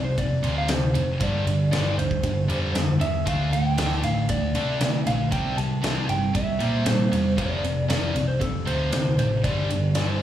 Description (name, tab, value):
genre	hard rock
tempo	116 BPM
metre	4/4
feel	straight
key	unclear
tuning	A4 = 439 Hz
part	lightly driven lead guitar	melody	0.0-10.2 s	A4 to A5	-29 LUFS	equal	none
part	high-gain distorted guitar	riff	0.0-10.2 s	F2 to D4	-25 LUFS	equal	distortion
part	picked electric bass	bass	0.0-10.2 s	F1 to C3	-26 LUFS	equal	none
part	huge arena drum kit	drums	0.2-10.1 s	kick drum, ride cymbal, snare drum	-28 LUFS	equal	none
room	light reverb, small room reverb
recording	small room ambience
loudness	-21 LUFS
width	side -11 dB against mid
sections	0.0-10.2 A section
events	none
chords	0.0 F5; 1.2 G5; 3.3 D5; 5.3 C; 7.4 F; 9.4 G5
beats	0.17 0.69 | 1.20 1.72 2.23 2.75 | 3.26 3.78 4.29 4.81 | 5.32 5.84 6.35 6.87 | 7.38 7.90 8.41 8.93 | 9.44 9.96